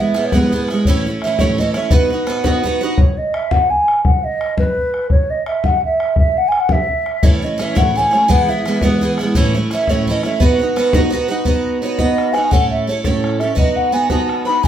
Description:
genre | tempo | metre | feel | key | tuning
celtic folk, Celtic jig | 113 BPM (dotted quarters) | 6/8 | straight | B mixolydian | A4 = 439 Hz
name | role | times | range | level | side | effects
mellow hollow wooden flute | melody | 0.0-14.7 s | B4 to B5 | -18 LUFS | equal | slapback echo
picked twelve-string acoustic guitar | accompaniment | 0.0-3.0, 7.2-14.7 s | A2 to B4 | -17 LUFS | right 2 dB | none
bodhran | percussion | 0.1-14.7 s | none | -18 LUFS | left 1 dB | none
room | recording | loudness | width
wet studio reverb, RT60 0.7 s | heard from further back in the room | -14 LUFS | side -10 dB against mid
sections
0.0-3.0 A section; 3.0-11.5 A section; 11.5-14.7 B section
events
none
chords
0.0 E; 0.8 A; 1.9 B; 3.0 N.C.; 6.2 A; 8.3 E; 9.3 A; 10.4 B; 12.5 A; 13.6 B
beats
0.31 | 0.85 1.38 | 1.92 2.45 | 2.98 3.52 | 4.05 4.58 | 5.11 5.64 | 6.17 6.70 | 7.23 7.76 | 8.29 8.82 | 9.35 9.88 | 10.40 10.93 | 11.46 11.99 | 12.52 13.04 | 13.57 14.10 | 14.63

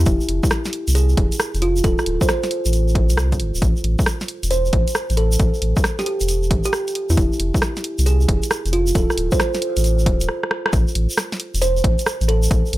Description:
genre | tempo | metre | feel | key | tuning
UK garage, two-step garage | 135 BPM | 4/4 | swing 67% on 16ths | A minor | A4 = 440 Hz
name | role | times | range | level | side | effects
kalimba | melody | 0.0-12.5 s | E4 to C5 | -23 LUFS | right 2 dB | dub echo
saturated sub bass | bass | 0.0-12.8 s | D1 to E2 | -18 LUFS | equal | tube saturation, sidechain pumping
electronic kick drum | drums | 0.1-12.6 s | none | -19 LUFS | equal | overdrive, studio reverb
garage drum kit | drums | 0.1-12.8 s | hi-hat, rim click, snare drum | -23 LUFS | equal | studio reverb
egg shaker | percussion | 0.1-12.7 s | none | -30 LUFS | right 1 dB | none
room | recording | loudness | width
little or no reverb | none | -17 LUFS | side -16 dB against mid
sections
0.0-10.7 A section; 10.7-12.8 B section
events
break 10.3-10.7; drum fill 10.3-10.7; band accent 10.6; drop 10.7-12.8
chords
0.1 F5; 1.8 D5; 3.6 A5; 7.2 F5; 9.0 D5; 10.7 A5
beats
| 0.06 0.51 0.95 1.40 | 1.84 2.29 2.73 3.17 | 3.62 4.06 4.51 4.95 | 5.40 5.84 6.29 6.73 | 7.17 7.62 8.06 8.51 | 8.95 9.40 9.84 10.29 | 10.73 11.17 11.62 12.06 | 12.51

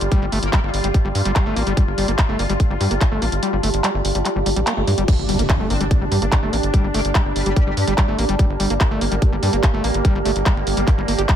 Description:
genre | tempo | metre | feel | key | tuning
psychedelic trance | 145 BPM | 4/4 | straight | G minor | A4 = 440 Hz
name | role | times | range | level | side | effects
bubbling stepped-filter texture | sustained chords | 0.0-11.4 s | G3 to F4 | -25 LUFS | right 1 dB | chorus, built-in reverb, sidechain pumping
tight sequencer bass | bass | 0.0-11.3 s | G1 to G2 | -22 LUFS | equal | none
drum and bass drum kit | drums | 0.0-11.4 s | crash cymbal, handclaps, hi-hat | -25 LUFS | equal | none
granular cloud pad | texture | 0.0-11.4 s | G4 to A5 | -28 LUFS | right 1 dB | built-in reverb, sidechain pumping
overdriven acid bass | riff | 0.1-11.4 s | G3 to G4 | -25 LUFS | equal | distortion, auto-pan, sidechain pumping, digital delay
electronic kick drum | drums | 0.1-11.4 s | none | -16 LUFS | equal | none
metallic wobble bass | second line | 0.4-0.7, 5.7-7.9 s | G3 to C4 | -33 LUFS | left 2 dB | wide subtle chorus, sidechain pumping, high-pass filter, tape echo
impact | sound effects | 5.1-6.7 s | none | -28 LUFS | equal | none
room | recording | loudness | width
little or no reverb | none | -16 LUFS | side -10 dB against mid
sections
0.0-5.1 A section; 5.1-11.4 B section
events
kick drops out 3.4-5.1; band accent 4.7; drop 5.1-11.4; impact 5.1-6.7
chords
0.0 G5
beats
| 0.12 0.53 0.94 1.36 | 1.77 2.19 2.60 3.01 | 3.43 3.84 4.25 4.67 | 5.08 5.50 5.91 6.32 | 6.74 7.15 7.56 7.98 | 8.39 8.81 9.22 9.63 | 10.05 10.46 10.88 11.29

